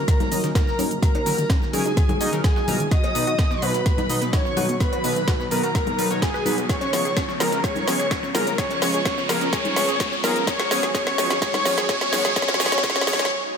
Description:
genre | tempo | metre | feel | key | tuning
progressive house | 127 BPM | 4/4 | straight | unclear | A4 = 440 Hz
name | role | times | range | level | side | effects
wide unison lead | melody | 0.0-13.3 s | Ab4 to D#5 | -25 LUFS | equal | dub echo
warm studio violin section | second line | 0.0-13.3 s | Ab5 to D#6 | -31 LUFS | left 1 dB | vintage 12-bit sampler grit, sidechain pumping, dub echo
airy breathy pad | sustained chords | 0.0-13.6 s | B2 to Gb4 | -32 LUFS | right 1 dB | chorus, sidechain pumping
wide unison pluck | arpeggios | 0.0-13.3 s | Eb3 to B4 | -30 LUFS | right 1 dB | vintage 12-bit sampler grit, sidechain pumping, dub echo
fat analog bass | bass | 0.0-13.3 s | Eb1 to Db2 | -34 LUFS | equal | none
riser and swell | sound effects | 1.7-13.6 s | none | -30 LUFS | equal | none
breakbeat sampler-style drum kit | drums | 0.1-13.3 s | hi-hat, snare drum | -37 LUFS | left 1 dB | none
deep house drum kit | drums | 0.1-13.3 s | hi-hat, shaker, snare drum | -27 LUFS | equal | studio reverb
electronic kick drum | drums | 0.1-12.9 s | none | -22 LUFS | equal | studio reverb
congas and cowbell | percussion | 0.2-12.6 s | none | -33 LUFS | left 4 dB | sidechain pumping on perc
chorused polysynth | stabs | 0.3-13.2 s | Cb3 to Eb5 | -30 LUFS | left 2 dB | sidechain pumping, dub echo
room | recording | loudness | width
moderate lush hall reverb, RT60 1.9 s, digital ambience | high-pass filter | -19 LUFS | side -6 dB against mid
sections
0.0-13.6 A section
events
build-up 0.0-13.6; drum fill 0.0-13.3; filter sweep on synth pluck 0.0-13.6; filter sweep on analog synth pad 0.0-13.6; filter sweep 0.0-13.6; riser 1.7-13.3; break 13.3; swell 13.3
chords
0.0 Ebm7; 2.9 B; 6.7 Db7; 10.5 Abm7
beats
0.08 0.55 | 1.02 1.50 1.97 2.44 | 2.92 3.39 3.86 4.33 | 4.80 5.28 5.75 6.22 | 6.69 7.17 7.64 8.11 | 8.58 9.06 9.53 10.00 | 10.47 10.95 11.42 11.89 | 12.36 12.84 13.31

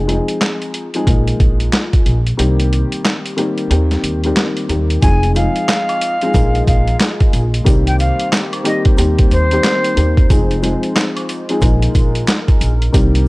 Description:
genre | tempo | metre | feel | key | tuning
hip hop, boom-bap hip-hop | 91 BPM | 4/4 | swing 62% on 16ths | F minor | A4 = 438 Hz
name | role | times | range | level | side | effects
dark upright piano | accompaniment | 0.0-13.3 s | Eb3 to Ab4 | -19 LUFS | left 2 dB | cassette tape, high-pass filter, low-pass filter
upright bass | bass | 0.0-13.3 s | F1 to Eb2 | -15 LUFS | equal | none
boom bap sampler-style drum kit | drums | 0.1-13.3 s | handclaps, hi-hat, kick drum, snare drum | -15 LUFS | equal | none
breathy jazz flute | melody | 5.0-10.3 s | C5 to Ab5 | -19 LUFS | equal | high-pass filter, low-pass filter
hollow soft pad | sustained chords | 5.0-13.3 s | G3 to Eb5 | -28 LUFS | equal | chorus, high-pass filter, low-pass filter
tube shaker and woodblock | percussion | 5.0-13.1 s | none | -34 LUFS | equal | none
room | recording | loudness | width
small room ambience | dry, gritty hardware recording, cassette tape | -12 LUFS | side -22 dB against mid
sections
0.0-5.0 A section; 5.0-13.3 B section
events
kick muted 2.4-5.0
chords
0.0 Fm7; 1.1 Bb7sus4; 2.4 Cm7; 3.7 Eb6; 5.0 Fm7; 6.3 Bb7sus4; 7.7 Cm7; 9.0 Eb6; 10.3 Fm7; 11.6 Bb7sus4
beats
0.41 1.07 1.73 | 2.39 3.05 3.71 4.37 | 5.03 5.69 6.34 7.00 | 7.66 8.32 8.98 9.64 | 10.30 10.96 11.62 12.28 | 12.94

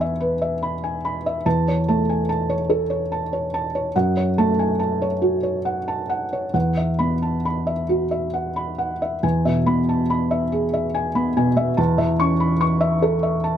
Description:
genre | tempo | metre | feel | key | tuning
neoclassical minimalist piano | 44-49 BPM (dotted quarters) | 6/8 | rubato | E major | A4 = 440 Hz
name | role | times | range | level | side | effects
felt-muted upright piano | solo | 0.0-13.6 s | E2 to C#6 | -19 LUFS | equal | none
room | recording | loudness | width
light reverb | close, detailed microphones | -19 LUFS | side -9 dB against mid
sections
0.0-9.2 A section; 9.2-13.6 A section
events
none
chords
0.0 E; 1.4 A/E; 3.9 F#m; 6.5 Esus2; 9.2 E; 11.8 A/E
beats
0.18 | 1.45 2.69 | 3.94 5.21 | 6.54 7.89 | 9.23 10.52 | 11.78 13.03

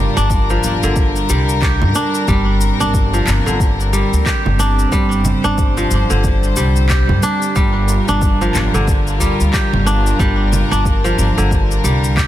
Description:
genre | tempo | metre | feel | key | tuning
organic downtempo | 91 BPM | 4/4 | swing 59% on 16ths | G minor pentatonic | A4 = 438 Hz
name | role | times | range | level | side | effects
warm studio string section | sustained chords | 0.0-12.3 s | G3 to C5 | -22 LUFS | left 1 dB | sidechain pumping
kora | arpeggios | 0.0-12.3 s | D3 to G4 | -18 LUFS | right 1 dB | digital delay
upright bass | bass | 0.0-12.3 s | G1 to G2 | -16 LUFS | equal | none
electronic cabasa, handclaps and congas | drums | 0.2-12.3 s | none | -23 LUFS | right 1 dB | none
electronic kick drum | drums | 0.3-12.3 s | none | -17 LUFS | equal | none
udu | percussion | 9.2-9.4 s | none | -20 LUFS | equal | none
room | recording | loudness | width
studio ambience | dense, heavily limited modern master | -13 LUFS | side -13 dB against mid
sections
0.0-12.3 A section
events
none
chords
0.0 Gm7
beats
0.30 0.96 1.62 | 2.28 2.94 3.60 4.26 | 4.92 5.58 6.24 6.90 | 7.56 8.22 8.88 9.54 | 10.20 10.85 11.51 12.17

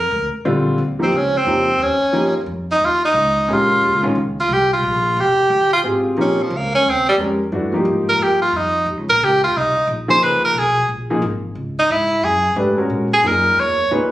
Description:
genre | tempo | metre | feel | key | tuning
modal jazz | 178 BPM | 4/4 | swing 62% on 8ths | Eb mixolydian | A4 = 439 Hz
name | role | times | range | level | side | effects
upright bass | bass | 0.0-14.1 s | F1 to A#2 | -26 LUFS | equal | none
warm concert grand piano | accompaniment | 0.5-14.1 s | A#2 to B4 | -19 LUFS | equal | none
clear tenor saxophone | melody | 1.0-13.9 s | F3 to C#5 | -15 LUFS | right 1 dB | none
room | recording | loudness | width
moderate studio reverb, RT60 0.5 s | recorded on a phone in the room, club reverb, compression | -15 LUFS | side -15 dB against mid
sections
0.8-11.6 A section; 11.6-14.1 A section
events
tenor saxophone solo 0.8-14.1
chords
0.0 A#; 0.8 Eb7; 10.2 Db13; 11.6 F#13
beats
0.12 0.45 | 0.79 1.12 1.46 1.80 | 2.13 2.47 2.81 3.15 | 3.48 3.82 4.16 4.49 | 4.83 5.17 5.50 5.84 | 6.18 6.52 6.85 7.19 | 7.53 7.86 8.20 8.54 | 8.87 9.21 9.55 9.88 | 10.22 10.55 10.89 11.23 | 11.56 11.90 12.23 12.57 | 12.91 13.24 13.58 13.91

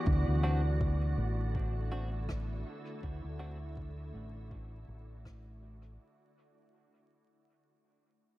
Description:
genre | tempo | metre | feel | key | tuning
ambient dub | 81 BPM | 4/4 | swing 58% on 16ths | unclear | A4 = 438 Hz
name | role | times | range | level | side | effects
soft additive organ-like pad | sustained chords | 0.0-6.0 s | D3 to F#4 | -42 LUFS | equal | ensemble chorus, built-in reverb
wind-like tuned noise texture | texture | 0.0-6.0 s | D5 | -49 LUFS | right 6 dB | built-in reverb
fingered electric bass | bass | 0.1-6.0 s | A1 to D2 | -34 LUFS | equal | none
electronic kick drum | drums | 0.1-5.4 s | none | -35 LUFS | equal | none
direct-recorded clean electric guitar | stabs | 0.4-3.6 s | C4 to F#4 | -43 LUFS | equal | low-pass filter, dub echo
rim click | drums | 2.3-5.4 s | none | -54 LUFS | left 1 dB | dub echo
room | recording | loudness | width
little or no reverb | dark, warm production, vinyl crackle | -32 LUFS | side -17 dB against mid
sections
0.0-6.0 A section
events
fade-out 0.0-6.0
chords
0.1 D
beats
| 0.07 0.81 1.55 2.29 | 3.03 3.77 4.51 5.25

